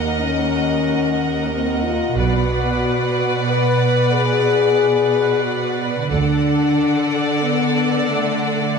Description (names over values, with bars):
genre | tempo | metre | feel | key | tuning
cinematic | free time | none | none | unclear | A4 = 440 Hz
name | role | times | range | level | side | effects
warm symphonic violin section | melody | 0.0-8.8 s | F#5 | -28 LUFS | left 3 dB | none
rich symphonic violin section | second line | 0.0-8.8 s | D5 to D#5 | -25 LUFS | left 2 dB | none
rich symphonic viola section | accompaniment | 0.0-8.8 s | A4 to B4 | -25 LUFS | right 3 dB | none
mellow French horn section | sustained chords | 0.0-8.8 s | A3 to B4 | -20 LUFS | left 6 dB | none
rich symphonic cello section | bass | 0.0-8.8 s | D#2 to D3 | -22 LUFS | right 5 dB | none
rich symphonic double bass section | bass | 2.2-2.8, 6.1-6.7 s | B1 to D2 | -24 LUFS | right 4 dB | none
room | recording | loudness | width
moderate scoring stage reverb, RT60 1.6 s | nothing above 10.6 kHz | -16 LUFS | side -5 dB against mid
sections
0.0-8.8 A section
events
none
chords
0.0 D#m; 2.2 Bm; 6.1 D